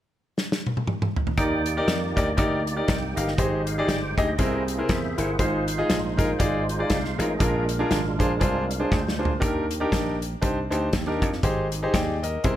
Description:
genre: uptempo gospel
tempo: 119 BPM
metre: 4/4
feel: swing 58% on 8ths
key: Eb major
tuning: A4 = 440 Hz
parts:
  - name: natural country drum kit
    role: drums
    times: 0.4-12.6 s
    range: hi-hat, kick drum, snare drum, toms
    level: -26 LUFS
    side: equal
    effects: none
  - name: clear grand piano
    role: accompaniment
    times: 1.4-12.6 s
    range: Ab2 to G5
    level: -25 LUFS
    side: equal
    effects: none
  - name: percussive tonewheel organ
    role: sustained chords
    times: 1.4-9.7 s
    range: G3 to G5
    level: -30 LUFS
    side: right 3 dB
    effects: slow rotary speaker, overdrive, chorus vibrato
  - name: dry thumbed slap bass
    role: bass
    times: 1.4-12.6 s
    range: G1 to F2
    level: -29 LUFS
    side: equal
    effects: none
room: light reverb, small room ambience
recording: none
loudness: -22 LUFS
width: side -12 dB against mid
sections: 0.0-1.4 A section; 1.4-9.4 B section; 9.4-12.6 C section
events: drum fill 0.4-1.4, 8.9-9.4; tonewheel organ fill 4.6-5.4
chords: 0.0 N.C.; 1.4 Ebmaj7; 3.4 Abmaj7; 4.4 C7b13; 5.4 Fm7/Ab; 7.4 Bb7; 9.4 Ebmaj7; 11.4 Abmaj7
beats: 0.37 0.88 | 1.38 1.88 2.38 2.88 | 3.38 3.88 4.39 4.89 | 5.39 5.89 6.40 6.90 | 7.40 7.91 8.41 8.91 | 9.42 9.92 10.43 10.93 | 11.44 11.94 12.44

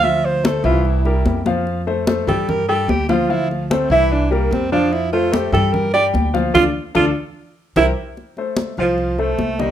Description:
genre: Afro-Cuban jazz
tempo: 148 BPM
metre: 4/4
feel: straight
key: F major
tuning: A4 = 440 Hz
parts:
  - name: breathy alto saxophone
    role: melody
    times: 0.0-9.7 s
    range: F3 to E5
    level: -19 LUFS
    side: right 4 dB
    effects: none
  - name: warm baby grand piano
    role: accompaniment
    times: 0.0-9.7 s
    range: Eb3 to G5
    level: -20 LUFS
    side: left 4 dB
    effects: none
  - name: upright bass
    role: bass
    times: 0.0-9.7 s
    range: C2 to G2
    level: -21 LUFS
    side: right 1 dB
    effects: none
  - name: congas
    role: percussion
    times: 0.0-9.7 s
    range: none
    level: -22 LUFS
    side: left 2 dB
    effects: none
room: moderate large studio reverb, RT60 0.9 s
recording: band playing live in one room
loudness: -15 LUFS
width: side -10 dB against mid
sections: 0.0-8.2 A section; 8.2-9.7 B section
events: alto saxophone solo 0.0-8.2; drum fill 1.5, 7.6-8.2; band accent 6.5-8.2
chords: 0.0 Dm7; 0.9 C7; 1.7 F; 2.5 G5; 3.3 Dm7; 4.1 C7; 4.9 F; 5.7 G5; 6.5 Dm; 7.4 C7(no3); 8.2 F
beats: | 0.04 0.45 0.85 1.26 | 1.67 2.08 2.48 2.89 | 3.30 3.70 4.11 4.52 | 4.92 5.33 5.74 6.14 | 6.55 6.95 7.36 7.77 | 8.17 8.58 8.99 9.39

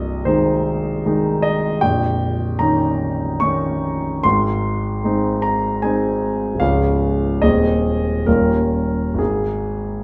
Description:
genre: classical, romantic character piece for solo piano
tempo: 61-79 BPM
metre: 3/4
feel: rubato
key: Ab major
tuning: A4 = 440 Hz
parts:
  - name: warm concert grand piano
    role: solo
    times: 0.0-10.0 s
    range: Bb0 to Db6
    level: -19 LUFS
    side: equal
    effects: none
room: wet large studio reverb, RT60 1.4 s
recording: none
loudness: -19 LUFS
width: mono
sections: 0.0-10.0 A section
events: none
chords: 0.0 Ab/C; 1.8 Eb7/Bb; 4.2 Ab; 6.6 Db; 7.4 Ab/Eb; 8.3 Eb9; 9.2 N.C.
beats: 0.26 1.05 | 1.82 2.59 3.42 | 4.24 5.04 5.82 | 6.60 7.42 8.27 | 9.19

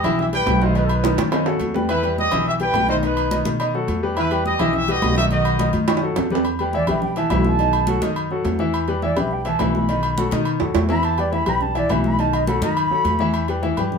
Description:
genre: latin, salsa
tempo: 210 BPM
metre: 4/4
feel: straight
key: E harmonic minor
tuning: A4 = 440 Hz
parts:
  - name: mellow trumpet section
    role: melody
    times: 0.0-5.7 s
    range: D#4 to G5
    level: -22 LUFS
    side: equal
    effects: none
  - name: clear concert grand piano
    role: accompaniment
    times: 0.0-14.0 s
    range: D#3 to E5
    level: -22 LUFS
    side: left 2 dB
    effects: none
  - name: upright bass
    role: bass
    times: 0.0-14.0 s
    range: B1 to B2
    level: -24 LUFS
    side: equal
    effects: none
  - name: agogo bells and timbales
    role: percussion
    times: 0.0-13.9 s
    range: none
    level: -26 LUFS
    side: right 2 dB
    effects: none
  - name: congas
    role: percussion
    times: 0.0-14.0 s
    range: none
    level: -27 LUFS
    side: left 2 dB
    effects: none
  - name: mellow jazz flute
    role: melody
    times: 6.7-13.5 s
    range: D5 to B5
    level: -23 LUFS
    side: right 2 dB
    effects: none
room: wet studio ambience, RT60 0.5 s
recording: band playing live in one room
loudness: -17 LUFS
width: side -6 dB against mid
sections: 0.0-6.5 A section; 6.5-14.0 B section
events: drum fill 1.0-1.9, 5.7-6.5, 10.6-11.0; flute solo 6.5-14.0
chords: 0.0 Em; 0.8 B7; 1.9 Em; 3.0 B7; 4.2 Em; 5.3 B7; 6.5 Em; 7.6 B7; 8.7 Em; 9.9 B7; 11.0 Em; 12.2 B7; 13.3 Em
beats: 0.18 0.47 | 0.75 1.04 1.32 1.61 | 1.89 2.17 2.46 2.75 | 3.03 3.31 3.60 3.88 | 4.17 4.45 4.74 5.02 | 5.31 5.59 5.88 6.16 | 6.45 6.74 7.02 7.31 | 7.59 7.88 8.17 8.45 | 8.74 9.03 9.31 9.60 | 9.89 10.18 10.46 10.75 | 11.04 11.32 11.61 11.90 | 12.19 12.47 12.76 13.05 | 13.34 13.63 13.91

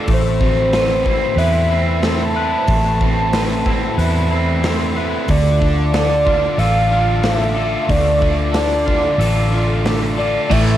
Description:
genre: rock, shoegaze and dream pop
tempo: 92 BPM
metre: 4/4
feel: straight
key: unclear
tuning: A4 = 440 Hz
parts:
  - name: sweeping resonant pad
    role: sustained chords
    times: 0.0-10.8 s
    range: C4 to D6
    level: -28 LUFS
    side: equal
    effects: chorus, cassette tape
  - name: twangy electric guitar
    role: arpeggios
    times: 0.0-10.8 s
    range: A3 to B4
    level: -28 LUFS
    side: left 8 dB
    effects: ensemble chorus, cassette tape, tape echo
  - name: overdriven semi-hollow guitar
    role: riff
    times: 0.0-10.8 s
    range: A2 to B4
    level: -23 LUFS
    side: right 8 dB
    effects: reverse reverb, cassette tape
  - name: thick fuzz guitar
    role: riff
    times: 0.0-10.8 s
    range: A2 to B4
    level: -24 LUFS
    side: left 6 dB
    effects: distortion, wide subtle chorus, cassette tape
  - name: pure sine lead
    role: melody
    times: 0.1-10.8 s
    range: C5 to A5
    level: -20 LUFS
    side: equal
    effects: chorus, cassette tape, tape echo
  - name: vintage muted fingered electric bass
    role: bass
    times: 0.1-10.8 s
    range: A1 to E2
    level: -19 LUFS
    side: equal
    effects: none
  - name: gated 80s drum kit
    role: drums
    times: 0.1-10.7 s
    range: crash cymbal, hi-hat, kick drum, snare drum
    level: -21 LUFS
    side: equal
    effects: cassette tape
  - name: crunchy overdriven guitar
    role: riff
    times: 10.5-10.8 s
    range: A2 to A3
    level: -18 LUFS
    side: equal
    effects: cassette tape
  - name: tambourine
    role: percussion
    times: 10.5-10.6 s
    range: none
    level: -37 LUFS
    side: right 10 dB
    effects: none
room: light reverb, small room ambience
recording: home recording on cassette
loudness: -14 LUFS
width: side -12 dB against mid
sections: 0.0-10.5 A section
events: none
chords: 0.1 Amadd9; 5.3 Dm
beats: | 0.09 0.74 1.39 2.04 | 2.69 3.34 3.99 4.64 | 5.29 5.94 6.59 7.25 | 7.90 8.55 9.20 9.86 | 10.51

